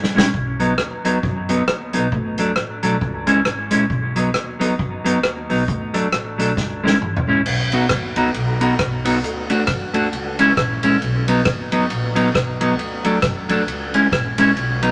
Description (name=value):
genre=ska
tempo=135 BPM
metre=4/4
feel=swing 58% on 8ths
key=unclear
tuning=A4 = 440 Hz
part: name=upright bass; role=bass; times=0.0-14.9 s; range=F#1 to F#2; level=-29 LUFS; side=equal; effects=none
part: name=vintage drum kit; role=drums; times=0.0-14.9 s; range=crash cymbal, hi-hat, kick drum, ride cymbal, rim click, snare drum, toms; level=-25 LUFS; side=equal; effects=none
part: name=clean electric guitar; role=accompaniment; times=0.1-14.9 s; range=F#3 to F#4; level=-21 LUFS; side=equal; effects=spring reverb, dub echo
room=moderate studio reverb, RT60 0.7 s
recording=none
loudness=-19 LUFS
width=mono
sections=0.0-7.5 A section; 7.5-14.9 B section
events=drum fill 0.0-0.3, 6.6-7.5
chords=0.3 B; 2.1 D; 3.0 C#m; 3.9 B; 5.7 D; 6.6 C#m; 7.5 B; 9.2 D; 10.1 C#m; 11.0 B; 12.8 D; 13.7 C#m